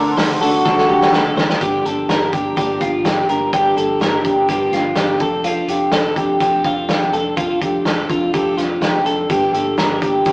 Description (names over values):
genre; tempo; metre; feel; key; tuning
jangly indie pop; 125 BPM; 4/4; straight; G minor; A4 = 440 Hz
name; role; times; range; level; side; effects
mellow bassoon; melody; 0.0-1.3 s; D4 to F#4; -17 LUFS; equal; none
picked steel-string acoustic guitar; accompaniment; 0.0-10.3 s; G2 to A4; -22 LUFS; equal; none
phased analog pad; sustained chords; 0.0-1.6 s; A4 to D6; -27 LUFS; equal; none
twelve-string electric guitar; arpeggios; 0.0-10.3 s; F4 to C5; -17 LUFS; equal; spring reverb, tape echo
vintage muted picked electric bass; bass; 0.0-10.3 s; F1 to D2; -30 LUFS; equal; none
loose indie drum kit; drums; 0.2-10.3 s; hi-hat, kick drum, snare drum; -20 LUFS; equal; none
room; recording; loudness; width
wet stone room reverb, RT60 1.0 s; rough rehearsal-room recording, warm saturation, small speaker sound; -14 LUFS; side -30 dB against mid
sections
0.0-1.6 A section; 1.6-10.3 B section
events
drum fill 0.7-1.6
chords
0.0 D7; 1.6 Gm7; 5.2 Dm7/F; 9.3 Gm7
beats
0.18 0.66 1.14 | 1.61 2.09 2.57 3.05 | 3.53 4.01 4.49 4.97 | 5.45 5.93 6.41 6.89 | 7.37 7.86 8.34 8.82 | 9.30 9.78 10.26